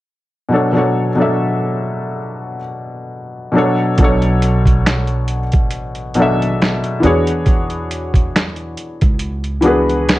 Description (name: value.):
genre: lo-fi hip hop.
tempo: 69 BPM.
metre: 4/4.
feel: swing 56% on 16ths.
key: B dorian.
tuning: A4 = 438 Hz.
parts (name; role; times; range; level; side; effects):
felt-muted upright piano; accompaniment; 0.5-10.2 s; B2 to E5; -16 LUFS; left 1 dB; plate reverb.
upright bass; bass; 4.0-10.2 s; A1 to E2; -20 LUFS; right 1 dB; none.
boom bap sampler-style drum kit; drums; 4.0-10.2 s; finger snaps, hi-hat, kick drum, snare drum; -14 LUFS; right 1 dB; none.
room: moderate studio reverb, RT60 0.6 s.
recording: cassette tape.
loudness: -13 LUFS.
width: side -17 dB against mid.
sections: 0.5-4.0 A section; 4.0-10.2 B section.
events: none.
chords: 0.5 Bm9; 7.0 E13.